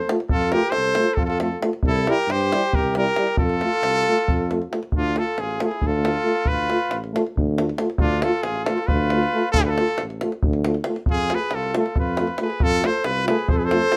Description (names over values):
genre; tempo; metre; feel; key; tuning
balkan folk, Balkan brass band; 273 BPM (eighths); 7/8; straight; F major, D dorian sharp4 from 4.9 s; A4 = 442 Hz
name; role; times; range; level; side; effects
clear trumpet; melody; 0.0-14.0 s; F4 to C5; -26 LUFS; equal; none
mellow flugelhorn; second line; 0.0-14.0 s; D4 to A4; -30 LUFS; equal; none
warm French horn; accompaniment; 0.1-14.0 s; E4 to F4; -30 LUFS; equal; none
warm euphonium; accompaniment; 0.1-14.0 s; G3 to A3; -30 LUFS; equal; none
davul; percussion; 0.1-14.0 s; none; -27 LUFS; equal; none
mellow tuba; bass; 0.3-13.8 s; A1 to G2; -28 LUFS; equal; none
room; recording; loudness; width
moderate studio reverb, RT60 0.5 s; none; -22 LUFS; mono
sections
0.0-4.9 A section; 4.9-14.0 B section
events
none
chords
0.0 F; 1.8 C; 3.4 F; 4.9 Dm; 11.1 F